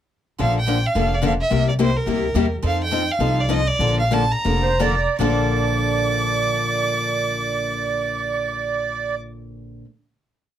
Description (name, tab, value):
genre	acoustic string swing (jazz manouche)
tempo	150-215 BPM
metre	4/4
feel	swing 56% on 8ths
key	Bb major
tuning	A4 = 435 Hz
part	clear violin	melody	0.4-9.2 s	Bb4 to D6	-24 LUFS	right 1 dB	none
part	picked steel-string acoustic guitar	accompaniment	0.4-9.9 s	Bb2 to A4	-25 LUFS	left 6 dB	none
part	picked steel-string acoustic guitar	accompaniment	0.4-9.9 s	Bb2 to A4	-30 LUFS	right 5 dB	none
part	upright bass	bass	0.4-9.8 s	F1 to F2	-24 LUFS	equal	none
part	accordion	second line	4.6-9.2 s	C5 to D5	-23 LUFS	right 5 dB	light tremolo tuning
room	moderate club ambience, RT60 0.5 s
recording	none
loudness	-18 LUFS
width	side -10 dB against mid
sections	0.4-5.2 A section; 5.2-8.4 final chord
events	slowing down 2.6-5.2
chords	0.4 Bbmaj7; 1.5 C7; 2.6 F7; 3.8 Bbmaj7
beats	| 0.39 0.67 0.95 1.23 | 1.51 1.79 2.07 2.35 | 2.63 2.91 3.20 3.49 | 3.80 4.12 4.45 4.81 | 5.20 5.60 6.00 6.40 | 6.80 7.20 7.60 8.00